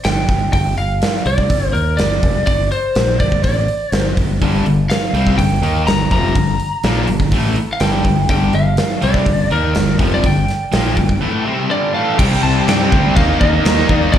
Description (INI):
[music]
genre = hard rock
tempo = 123 BPM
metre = 4/4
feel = straight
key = G minor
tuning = A4 = 440 Hz
[part]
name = lightly driven lead guitar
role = melody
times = 0.0-14.2 s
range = Bb4 to Bb5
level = -20 LUFS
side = equal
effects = slapback echo, analog delay
[part]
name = fingered electric bass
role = bass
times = 0.0-14.2 s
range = F1 to G2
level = -18 LUFS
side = equal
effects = none
[part]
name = gated 80s drum kit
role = drums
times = 0.0-14.2 s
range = crash cymbal, hi-hat, kick drum, snare drum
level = -18 LUFS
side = equal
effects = none
[part]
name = distorted electric guitar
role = riff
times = 4.4-14.2 s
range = F2 to Eb4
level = -19 LUFS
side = left 7 dB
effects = distortion, slapback echo
[part]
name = sludgy distorted guitar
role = riff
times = 4.4-14.2 s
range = F2 to Eb4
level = -22 LUFS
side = right 8 dB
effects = overdrive, slapback echo
[part]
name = lush unison pad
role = sustained chords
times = 12.5-14.2 s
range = Bb3 to F5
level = -26 LUFS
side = left 1 dB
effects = chorus, phaser
[part]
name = scooped high-gain guitar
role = riff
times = 12.2-14.2 s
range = Bb2 to Eb4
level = -23 LUFS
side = right 2 dB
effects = distortion, slapback echo
[sound]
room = studio reverb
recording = live gig heard through the venue's PA, club reverb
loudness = -13 LUFS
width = side -10 dB against mid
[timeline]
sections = 0.0-12.2 A section; 12.2-14.2 B section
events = none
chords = 0.0 Gm; 12.2 C5; 13.2 Eb5